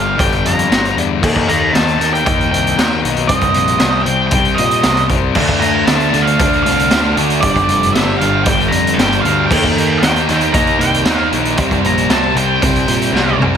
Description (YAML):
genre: quiet-loud alternative rock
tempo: 116 BPM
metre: 4/4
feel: straight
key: unclear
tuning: A4 = 440 Hz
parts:
  - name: octave-fuzz lead guitar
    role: melody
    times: 0.0-13.4 s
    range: D5 to Bb5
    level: -17 LUFS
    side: right 2 dB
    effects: distortion, tape echo
  - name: thick fuzz guitar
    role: riff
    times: 0.0-13.6 s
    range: G2 to Eb4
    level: -18 LUFS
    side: left 11 dB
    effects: distortion
  - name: fuzz picked electric bass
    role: bass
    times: 0.0-13.6 s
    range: F1 to Bb2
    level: -20 LUFS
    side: right 1 dB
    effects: overdrive
  - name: raw garage drum kit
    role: drums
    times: 0.2-13.6 s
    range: crash cymbal, hi-hat, kick drum, snare drum, toms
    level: -17 LUFS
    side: right 1 dB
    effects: none
  - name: sludgy distorted guitar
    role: riff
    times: 5.4-13.6 s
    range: G2 to Eb4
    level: -19 LUFS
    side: right 17 dB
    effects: overdrive
room: light reverb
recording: none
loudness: -11 LUFS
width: side -8 dB against mid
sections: 0.0-13.6 A section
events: drum fill 13.1-13.6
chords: 0.0 Gm; 1.2 Eb; 3.3 Cm; 5.4 Dm; 7.4 G5; 9.5 Eb; 11.6 C5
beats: 0.19 0.71 | 1.23 1.74 2.26 2.78 | 3.29 3.81 4.33 4.85 | 5.36 5.88 6.40 6.92 | 7.43 7.95 8.47 8.99 | 9.51 10.02 10.54 11.06 | 11.58 12.10 12.62 13.14